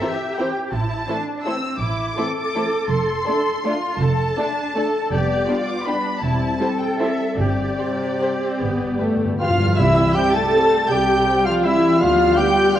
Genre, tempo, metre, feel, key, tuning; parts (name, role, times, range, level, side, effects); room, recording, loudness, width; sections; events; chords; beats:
classical; 141-180 BPM; 3/4; rubato; C major; A4 = 442 Hz
warm studio violin section; melody; 0.0-12.8 s; D5 to A6; -26 LUFS; left 2 dB
dark studio violin section; second line; 0.0-12.8 s; G4 to A5; -28 LUFS; left 2 dB
warm studio viola section; accompaniment; 0.0-12.8 s; C3 to A4; -24 LUFS; equal
warm French horn section; sustained chords; 0.0-12.8 s; E3 to A4; -24 LUFS; left 3 dB
warm studio cello section; bass; 0.0-12.8 s; E3 to A4; -26 LUFS; right 2 dB
dark studio double bass section; bass; 0.7-12.3 s; E1 to D2; -25 LUFS; right 2 dB
timpani; percussion; 7.4-10.3 s; G2 to C3; -24 LUFS; left 1 dB
concert flute; second line; 9.4-12.8 s; E5 to A5; -25 LUFS; left 1 dB
mellow cor anglais; second line; 9.4-12.8 s; E4 to A4; -27 LUFS; right 2 dB
mellow trumpet section; stabs; 9.4-12.8 s; E5 to A5; -24 LUFS; right 2 dB
warm clarinet; second line; 9.8-12.8 s; B3 to C4; -28 LUFS; left 1 dB
warm bassoon; accompaniment; 9.8-12.8 s; G3; -27 LUFS; right 3 dB
bright trombone section; sustained chords; 10.2-12.8 s; G3 to C4; -30 LUFS; right 3 dB
moderate scoring stage reverb, RT60 1.9 s; worn, warbling old tape, cassette tape, warbly pitch drift; -17 LUFS; side -11 dB against mid
0.0-9.8 A section; 9.8-12.8 B section
timpani fill 8.6-9.8
0.0 C7; 0.7 Am; 2.9 Dm7/F; 5.1 G7/F; 6.2 C/E; 7.4 Gsus4; 8.6 G; 9.8 C; 12.0 G7/D
0.02 0.39 | 0.73 1.09 1.47 | 1.82 2.18 2.56 | 2.92 3.27 3.65 | 4.01 4.37 4.75 | 5.12 5.48 5.86 | 6.22 6.60 7.00 | 7.39 7.79 8.21 | 8.60 9.00 9.41 | 9.79 10.16 10.54 | 10.90 11.27 11.65 | 12.01 12.37 12.75